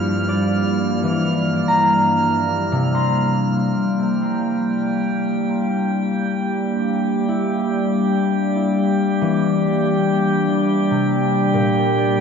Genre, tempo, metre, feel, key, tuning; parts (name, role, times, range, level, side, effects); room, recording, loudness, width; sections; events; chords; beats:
ambient; free time; G dorian; A4 = 440 Hz
warbly tape-like pad; sustained chords; 0.0-12.2 s; G3 to D5; -19 LUFS; left 1 dB; chorus, built-in reverb
rich symphonic cello section; bass; 0.0-3.6 s; G2; -28 LUFS; equal
drifting glass-harmonics texture; texture; 0.0-12.2 s; F3 to F6; -25 LUFS; right 2 dB; chorus, built-in reverb
concert harp; arpeggios; 0.3-12.2 s; Bb2 to C6; -22 LUFS; left 1 dB; tape echo
wet cathedral reverb, RT60 5.3 s; in a vast, echoing space, cassette tape; -17 LUFS; side -6 dB against mid
0.0-3.6 A section; 3.6-12.2 B section
0.0 Gm7; 3.6 Gm
free time